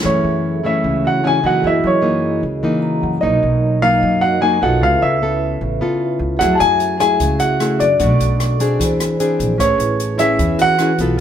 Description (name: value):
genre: bossa nova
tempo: 151 BPM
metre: 4/4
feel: straight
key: F# minor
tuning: A4 = 440 Hz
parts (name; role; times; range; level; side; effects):
- concert harp; second line; 0.0-11.2 s; C#4 to A4; -26 LUFS; right 2 dB; none
- nylon-string guitar; accompaniment; 0.0-11.2 s; F#2 to A4; -19 LUFS; left 2 dB; none
- vibraphone with medium hard mallets; accompaniment; 0.0-11.2 s; D#4 to C#6; -24 LUFS; right 4 dB; none
- upright bass; bass; 0.0-11.2 s; A1 to F#2; -21 LUFS; right 1 dB; none
- warm concert grand piano; melody; 0.1-11.0 s; C#5 to A5; -17 LUFS; equal; none
- open jazz drum kit; drums; 6.4-11.1 s; hi-hat, kick drum, rim click; -25 LUFS; equal; none
room: light reverb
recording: band playing live in one room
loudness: -14 LUFS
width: side -9 dB against mid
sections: 0.0-11.2 A section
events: vibraphone fill 2.6-3.2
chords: 0.0 F#m7; 1.6 F#13; 3.2 Bmaj7; 4.8 C#7alt; 6.4 F#m9; 8.0 Bm7; 8.8 Eaug7; 9.6 Amaj7